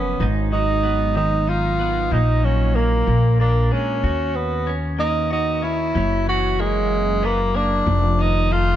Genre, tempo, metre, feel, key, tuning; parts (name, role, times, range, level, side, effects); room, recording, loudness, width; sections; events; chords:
pop; 63 BPM (dotted quarters); 6/8; straight; Eb minor; A4 = 441 Hz
warm tenor saxophone; melody; 0.0-8.8 s; Ab3 to Gb4; -21 LUFS; right 1 dB
twelve-string electric guitar; accompaniment; 0.0-8.8 s; F2 to Gb4; -24 LUFS; equal; double-tracked left and right
upright bass; bass; 0.0-8.8 s; F1 to Eb2; -21 LUFS; equal
light reverb; dark, warm production, nothing above 7.9 kHz; -17 LUFS; side -11 dB against mid
0.0-8.8 A section
0.2 Abm7; 2.1 Ebm/Bb; 3.1 Bb7; 4.0 Ebm7; 6.0 Gb7; 7.9 F7